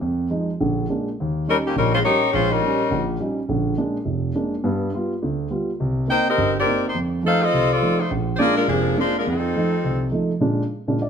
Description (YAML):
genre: jazz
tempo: 208 BPM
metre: 4/4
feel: swing 60% on 8ths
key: Bb mixolydian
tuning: A4 = 436 Hz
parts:
  - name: dark concert grand piano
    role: accompaniment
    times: 0.0-11.1 s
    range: F1 to D5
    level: -22 LUFS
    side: right 2 dB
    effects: none
  - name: bright saxophone section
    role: melody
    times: 1.5-3.1, 6.1-10.1 s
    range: Eb3 to G5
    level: -20 LUFS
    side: left 2 dB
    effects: none
room: moderate large studio reverb, RT60 1.2 s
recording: minimal, uncompressed stereo recording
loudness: -19 LUFS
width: side -7 dB against mid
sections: 0.0-10.4 A section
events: none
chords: 0.0 Fm7; 0.6 Bb7; 1.2 Eb7; 3.5 Bb7; 4.6 G7; 5.8 Cm7; 7.0 F7; 8.1 Bb7; 9.3 F7; 10.4 Bb7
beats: | 0.02 0.31 0.60 0.89 | 1.18 1.47 1.75 2.04 | 2.33 2.62 2.91 3.20 | 3.49 3.78 4.06 4.35 | 4.64 4.93 5.22 5.51 | 5.80 6.08 6.37 6.66 | 6.95 7.24 7.53 7.82 | 8.11 8.39 8.68 8.97 | 9.26 9.55 9.83 10.12 | 10.41 10.70 10.99